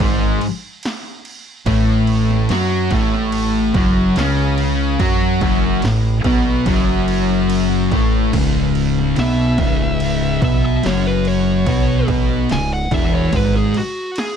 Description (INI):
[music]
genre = stoner and doom metal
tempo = 72 BPM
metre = 4/4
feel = straight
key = C# minor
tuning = A4 = 440 Hz
[part]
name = cranked stack guitar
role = riff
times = 0.0-8.3 s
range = F#2 to F#4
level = -22 LUFS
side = equal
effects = overdrive
[part]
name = thick fuzz guitar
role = riff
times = 0.0-13.7 s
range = C#2 to F#4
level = -20 LUFS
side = left 10 dB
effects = distortion
[part]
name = thick fuzz guitar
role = riff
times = 0.0-13.7 s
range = C#2 to F#4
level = -20 LUFS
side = right 10 dB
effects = distortion
[part]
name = growling fingered electric bass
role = bass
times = 0.0-13.7 s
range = C#1 to F#2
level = -21 LUFS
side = equal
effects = overdrive
[part]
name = punchy analog drum machine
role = drums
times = 0.0-14.4 s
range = crash cymbal, kick drum, snare drum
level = -22 LUFS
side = equal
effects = none
[part]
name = fuzz lead guitar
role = melody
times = 9.2-14.4 s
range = F#4 to G#5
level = -24 LUFS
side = equal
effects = distortion, ping-pong delay
[sound]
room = digital ambience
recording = dark, warm production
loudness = -14 LUFS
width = side -8 dB against mid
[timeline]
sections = 0.0-8.3 A section; 8.3-14.4 B section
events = kick and snare drop out 7.5-8.3; lead electric guitar solo 8.3-14.4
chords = 0.0 N.C.; 1.7 F#madd11; 8.3 C#m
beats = 0.00 0.83 | 1.67 2.50 3.33 4.17 | 5.00 5.83 6.66 7.50 | 8.33 9.16 10.00 10.83 | 11.66 12.50 13.33 14.16